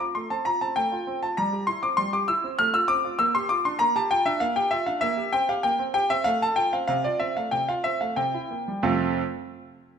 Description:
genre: classical-period piano sonatina.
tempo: 89-100 BPM.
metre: 3/4.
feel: straight.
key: F major.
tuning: A4 = 445 Hz.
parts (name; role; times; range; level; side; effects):
clear concert grand piano; solo; 0.0-9.2 s; F2 to F6; -22 LUFS; equal; none.
room: moderate recital hall reverb, RT60 1.7 s.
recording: minimal, uncompressed stereo recording.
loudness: -22 LUFS.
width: side -7 dB against mid.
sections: 0.0-8.8 A section; 8.8-10.0 B section.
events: none.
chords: 0.0 F/A; 1.4 C/G; 2.6 F/A; 3.2 Gm7/Bb; 5.0 C5/Bb; 6.3 F/A; 6.9 F/C; 8.2 C7; 8.8 F.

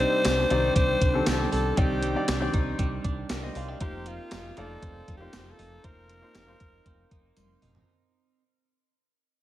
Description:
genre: 1980s-style pop.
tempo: 118 BPM.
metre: 4/4.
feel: straight.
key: unclear.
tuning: A4 = 435 Hz.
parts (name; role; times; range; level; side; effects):
raspy alto saxophone; melody; 0.0-7.4 s; F4 to C5; -28 LUFS; left 1 dB; tape echo.
clear concert grand piano; accompaniment; 0.0-7.9 s; C3 to G5; -31 LUFS; left 2 dB; none.
twelve-string electric guitar; riff; 0.0-8.4 s; G3 to Bb4; -36 LUFS; right 5 dB; analog chorus.
woody fretless electric bass; bass; 0.0-7.8 s; F1 to C2; -32 LUFS; equal; none.
gated 80s digital drum machine; drums; 0.2-7.9 s; hi-hat, kick drum, snare drum, toms; -28 LUFS; equal; gated reverb, gated reverb snare.
tambourine; percussion; 0.3-7.5 s; none; -46 LUFS; left 5 dB; none.
room: moderate lush hall reverb, RT60 2.1 s.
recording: none.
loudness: -23 LUFS.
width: side -14 dB against mid.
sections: 0.0-7.9 A section.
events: fade-out 0.0-7.9; drum fill 7.4-7.9.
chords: 0.0 Cmadd9; 3.8 F7sus4.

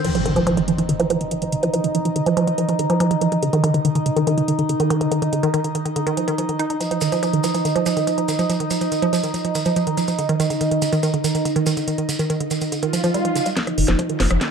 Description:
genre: psychedelic trance.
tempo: 142 BPM.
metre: 4/4.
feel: straight.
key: unclear.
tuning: A4 = 440 Hz.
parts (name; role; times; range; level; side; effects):
overtone-sweeping drone; sustained chords; 0.0-14.5 s; Eb4 to F5; -24 LUFS; right 1 dB; chorus, built-in reverb, sidechain pumping.
woody wave-folded pluck; riff; 0.0-14.5 s; D3 to Eb4; -20 LUFS; right 2 dB; chorus, auto-pan, sidechain pumping, digital delay.
garage drum kit; drums; 0.0-14.5 s; crash cymbal, hi-hat, rim click, snare drum; -29 LUFS; equal; small room ambience.
impact, swell and riser; sound effects; 0.0-1.7, 12.9-14.5 s; none; -27 LUFS; equal; none.
maracas; percussion; 6.8-13.5 s; none; -31 LUFS; right 2 dB; none.
electronic kick drum; drums; 13.6-14.5 s; none; -29 LUFS; equal; high-pass filter on kick, small room ambience.
round analog bass; bass; 13.8-14.4 s; F1; -19 LUFS; equal; none.
room: moderate lush hall reverb, RT60 1.5 s.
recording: dark, warm production.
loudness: -18 LUFS.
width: side -6 dB against mid.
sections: 0.0-13.6 A section.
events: impact 0.0-1.7; swell 12.9-13.6; drum fill 13.6-14.5; riser 13.6-14.5.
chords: 0.0 Ebsus2; 10.2 Ebmaj7(no3)/D; 13.6 Ebsus2.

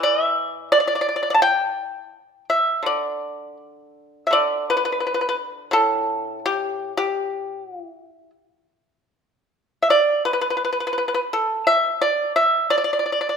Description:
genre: chinese traditional, Chinese solo plucked strings.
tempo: 86 BPM.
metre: 4/4.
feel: rubato.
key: D zhi mode.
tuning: A4 = 440 Hz.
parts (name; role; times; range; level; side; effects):
pipa; solo; 0.0-13.4 s; A2 to A5; -19 LUFS; equal; none.
room: moderate recital hall reverb, RT60 1.4 s.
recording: minimal, uncompressed stereo recording.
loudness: -19 LUFS.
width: side -6 dB against mid.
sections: 0.0-4.3 A section; 4.3-13.4 B section.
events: none.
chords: none.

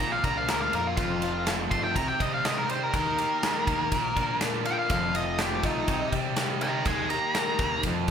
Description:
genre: classic rock.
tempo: 122 BPM.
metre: 4/4.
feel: straight.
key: unclear.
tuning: A4 = 440 Hz.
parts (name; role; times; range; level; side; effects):
octave-fuzz lead guitar; melody; 0.0-7.8 s; Eb4 to C6; -28 LUFS; left 1 dB; distortion.
tonewheel organ; sustained chords; 0.0-8.1 s; F3 to C5; -43 LUFS; right 1 dB; none.
distorted electric guitar; riff; 0.0-8.1 s; F2 to Bb3; -32 LUFS; right 8 dB; overdrive.
overdriven electric guitar; riff; 0.0-8.1 s; F2 to G4; -33 LUFS; left 6 dB; none.
growling fingered electric bass; bass; 0.0-8.1 s; F1 to C3; -36 LUFS; equal; overdrive.
gated 80s drum kit; drums; 0.2-8.1 s; kick drum, ride cymbal, snare drum; -30 LUFS; equal; none.
room: light reverb.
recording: band playing live in one room.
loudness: -24 LUFS.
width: side -8 dB against mid.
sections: 0.0-8.1 A section.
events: lead electric guitar solo 0.0-8.1.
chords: 0.0 Bb; 1.0 F; 2.0 Cm; 2.9 Eb; 3.9 Bb; 4.9 F; 5.9 Cm; 6.9 Eb.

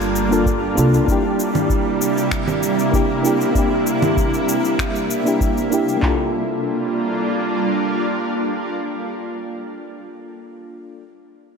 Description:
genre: sunset chillout.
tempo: 97 BPM.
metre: 4/4.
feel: straight.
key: G dorian.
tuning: A4 = 441 Hz.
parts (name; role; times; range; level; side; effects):
mellow FM electric piano; accompaniment; 0.0-11.0 s; Bb3 to A4; -22 LUFS; left 1 dB; chorus, auto-pan, vintage 12-bit sampler grit, ping-pong delay.
shimmering ambient pad; sustained chords; 0.0-9.3 s; C3 to F4; -21 LUFS; right 1 dB; chorus, built-in reverb, vintage 12-bit sampler grit.
upright bass; bass; 0.0-1.0 s; G1 to C2; -20 LUFS; equal; none.
electronic cabasa, congas and finger snaps; drums; 0.0-6.0 s; none; -26 LUFS; right 1 dB; none.
soft vintage rhythm box; drums; 0.5-6.2 s; handclaps, kick drum; -22 LUFS; equal; overdrive.
room: wet lush hall reverb, RT60 2.8 s.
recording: dreamy mix soaked in reverb.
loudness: -17 LUFS.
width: side -5 dB against mid.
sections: 0.0-6.0 A section; 6.0-8.5 B section.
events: none.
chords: 0.0 Gm7; 1.1 C7; 6.0 Gm7.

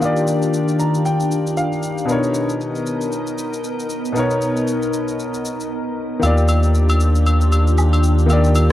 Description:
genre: amapiano.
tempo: 116 BPM.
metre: 4/4.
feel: swing 58% on 16ths.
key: Eb major.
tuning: A4 = 441 Hz.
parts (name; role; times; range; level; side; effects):
warm concert grand piano; accompaniment; 0.0-8.7 s; B2 to Bb5; -22 LUFS; left 1 dB; none.
glassy FM pad; sustained chords; 0.0-8.7 s; Eb3 to A#4; -21 LUFS; left 1 dB; ensemble chorus, built-in reverb.
shaker; drums; 0.0-8.7 s; none; -31 LUFS; left 2 dB; none.
saturated sub bass; bass; 6.2-8.7 s; Eb2; -14 LUFS; equal; transformer saturation.
agogo bells and woodblock; percussion; 6.2-8.7 s; none; -24 LUFS; equal; none.
room: light reverb, digital ambience.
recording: worn, warbling old tape, cassette tape, warbly pitch drift.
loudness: -16 LUFS.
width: side -13 dB against mid.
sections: 0.0-8.7 A section.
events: grand piano fill 0.5-2.1; silent gap 5.7-6.2.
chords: 0.0 Ebmaj9; 2.1 Bmaj9; 6.2 Ebmaj9.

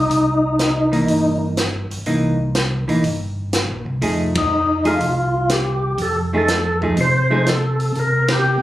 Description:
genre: soul jazz organ trio.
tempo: 122 BPM.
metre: 4/4.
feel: swing 68% on 8ths.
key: unclear.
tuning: A4 = 439 Hz.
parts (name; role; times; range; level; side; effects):
percussive tonewheel organ; melody; 0.0-1.4, 4.4-8.6 s; Eb4 to C5; -18 LUFS; left 1 dB; slow rotary speaker, overdrive, chorus vibrato.
mellow tonewheel organ; bass; 0.0-8.6 s; F1 to C3; -22 LUFS; equal; slow rotary speaker.
compact cocktail drum kit; drums; 0.1-8.4 s; hi-hat, kick drum, ride cymbal, snare drum; -24 LUFS; equal; none.
hollow-body jazz guitar; accompaniment; 0.9-7.5 s; E3 to G#4; -19 LUFS; right 1 dB; none.
room: moderate studio ambience, RT60 0.5 s.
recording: recorded on a phone in the room, club reverb, compression.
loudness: -16 LUFS.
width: side -14 dB against mid.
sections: 0.0-8.6 A section.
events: band accent 4.3, 8.2.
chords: 0.1 C7#9; 4.0 F7#9; 8.0 C7(no3).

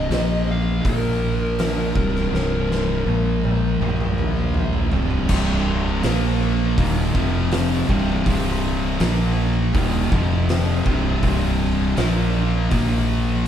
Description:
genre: stoner and doom metal.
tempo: 81 BPM.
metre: 4/4.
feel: straight.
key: unclear.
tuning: A4 = 439 Hz.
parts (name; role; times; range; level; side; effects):
fuzz lead guitar; melody; 0.0-4.5 s; Bb4 to F5; -27 LUFS; equal; distortion, analog delay.
thick fuzz guitar; riff; 0.0-13.5 s; C2 to Bb3; -26 LUFS; left 7 dB; distortion.
thick fuzz guitar; riff; 0.0-13.5 s; C2 to Bb3; -26 LUFS; right 6 dB; distortion.
fuzz fingered electric bass; bass; 0.0-13.5 s; C1 to Bb1; -23 LUFS; equal; overdrive.
oversized low-tuned drum kit; drums; 0.1-12.9 s; crash cymbal, hi-hat, kick drum, snare drum, toms; -24 LUFS; equal; none.
high-gain distorted guitar; riff; 5.3-13.5 s; C2 to Bb3; -26 LUFS; right 1 dB; distortion.
room: light reverb.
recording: band playing live in one room.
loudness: -18 LUFS.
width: side -9 dB against mid.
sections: 0.0-5.3 A section; 5.3-13.5 B section.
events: drum fill 2.3-5.3.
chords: 0.1 Bb5; 2.0 C5; 3.1 Bb5; 4.9 C5; 6.0 Bb5; 6.8 Eb5; 7.2 F5; 7.9 C5; 9.0 Bb5; 9.7 Eb5; 10.1 F5; 10.9 C5; 12.0 Bb5.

